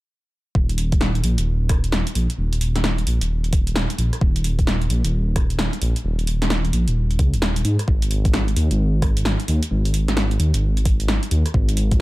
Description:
UK garage, two-step garage; 131 BPM; 4/4; swing 63% on 16ths; A4 = 438 Hz
dark detuned saw bass; bass; 0.6-12.0 s; Eb1 to Ab2; -20 LUFS; equal
electronic kick drum; drums; 0.6-12.0 s; -19 LUFS; equal; overdrive
punchy analog drum machine; drums; 0.7-12.0 s; hi-hat, rim click, snare drum; -25 LUFS; equal
little or no reverb; -18 LUFS; side -18 dB against mid
0.6-12.0 A section
| 0.55 1.01 1.47 1.92 | 2.38 2.84 3.30 3.76 | 4.21 4.67 5.13 5.59 | 6.05 6.50 6.96 7.42 | 7.88 8.34 8.79 9.25 | 9.71 10.17 10.63 11.08 | 11.54 12.00

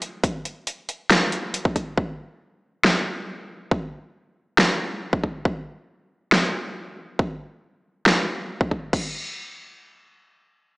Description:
dubstep; 138 BPM; 4/4; half-time
big-room dance drum kit; drums; 0.0-9.0 s; crash cymbal, hi-hat, snare drum; -20 LUFS; equal; overdrive, studio reverb
electronic kick drum; drums; 0.2-9.0 s; -24 LUFS; equal; overdrive, studio reverb
wet lush hall reverb, RT60 1.9 s; small speaker sound; -21 LUFS; side -24 dB against mid
0.0-8.9 A section; 8.9-10.8 B section
| 0.23 0.67 1.10 1.54 | 1.97 2.41 2.84 3.28 | 3.71 4.15 4.58 5.02 | 5.45 5.89 6.32 6.76 | 7.19 7.63 8.06 8.50 | 8.93

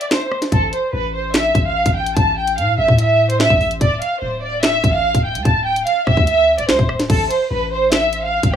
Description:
hip hop, drill; 146 BPM; 4/4; half-time; A minor; A4 = 439 Hz
warm studio violin section; melody; 0.0-8.6 s; A4 to A5; -17 LUFS; right 1 dB; low-pass filter
drill drum kit; drums; 0.0-8.6 s; crash cymbal, finger snaps, hi-hat, kick drum, rim click, snare drum; -17 LUFS; equal
long sustained 808-style bass; bass; 0.5-8.6 s; C1 to A2; -22 LUFS; left 1 dB
light reverb; rough home demo mix, small room ambience; -14 LUFS; side -9 dB against mid
0.0-7.1 A section; 7.1-8.6 B section
break 0.0-0.5
0.0 N.C.; 0.5 A5; 3.8 D5; 7.1 Am
0.11 | 0.52 0.93 1.34 1.75 | 2.17 2.58 2.99 3.40 | 3.81 4.22 4.63 5.04 | 5.45 5.86 6.28 6.69 | 7.10 7.51 7.92 8.33

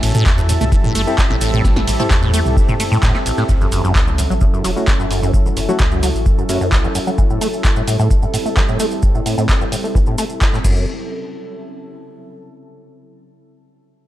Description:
acid house; 130 BPM; 4/4; straight; A4 = 441 Hz
warbly tape-like pad; sustained chords; 0.0-10.9 s; F#3 to A4; -25 LUFS; right 1 dB; chorus, built-in reverb, vintage 12-bit sampler grit, sidechain pumping
liquid acid bass; riff; 0.0-10.9 s; A1 to A3; -20 LUFS; equal; phaser, sidechain pumping, dub echo
warm sub bass; bass; 0.0-6.8, 10.6-10.9 s; E1 to E2; -20 LUFS; equal; sidechain pumping
punchy analog drum machine; drums; 0.0-10.7 s; crash cymbal, handclaps, hi-hat, ride cymbal, snare drum, toms; -23 LUFS; right 1 dB; overdrive
maracas; percussion; 0.0-10.9 s; -31 LUFS; right 2 dB
deep dark ambient pad; texture; 0.0-12.7 s; C4 to A5; -28 LUFS; equal; chorus, built-in reverb, sidechain pumping
electronic kick drum; drums; 0.3-10.7 s; -16 LUFS; equal
deep mellow chord stab; stabs; 1.1-6.6 s; A3 to A4; -24 LUFS; left 2 dB; chorus, dub echo
impact; sound effects; 3.5-5.3 s; -26 LUFS; equal
little or no reverb; dark, warm production; -13 LUFS; side -14 dB against mid
0.0-3.5 A section; 3.5-10.9 B section; 10.9-12.7 C section
drop 0.0-3.5; impact 3.5-5.3; filter sweep on acid bass 3.5-10.9
0.0 Am7; 3.5 F#m7; 7.2 Am7; 10.6 F#m7
0.26 0.72 1.18 | 1.64 2.11 2.57 3.03 | 3.49 3.95 4.41 4.88 | 5.34 5.80 6.26 6.72 | 7.18 7.64 8.11 8.57 | 9.03 9.49 9.95 10.41 | 10.88 11.34 11.80 12.26

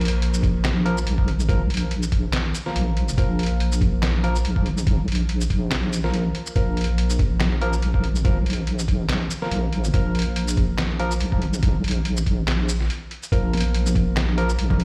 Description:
deep dubstep; 142 BPM; 4/4; swing 55% on 16ths, half-time; A4 = 440 Hz
barky tine electric piano; stabs; 0.0-14.5 s; F3 to Bb4; -31 LUFS; equal; phaser, dub echo
deep soft wobble bass; bass; 0.0-14.8 s; Bb1; -24 LUFS; equal; chorus
trip hop sampler-style drum kit; drums; 0.0-14.8 s; handclaps, hi-hat, shaker, snare drum; -31 LUFS; equal; small room ambience
electronic kick drum; drums; 0.4-14.8 s; -24 LUFS; equal; small room ambience
congas; percussion; 13.5-14.8 s; -31 LUFS; equal
little or no reverb; played on a big sound system in a bare room, large studio reverb; -22 LUFS; mono
0.0-14.8 A section
break 12.9-13.3
0.0 Bb5
0.22 0.64 1.07 | 1.49 1.91 2.33 2.76 | 3.18 3.60 4.02 4.45 | 4.87 5.29 5.71 6.14 | 6.56 6.98 7.40 7.83 | 8.25 8.67 9.09 9.52 | 9.94 10.36 10.78 11.21 | 11.63 12.05 12.47 12.90 | 13.32 13.74 14.16 14.59

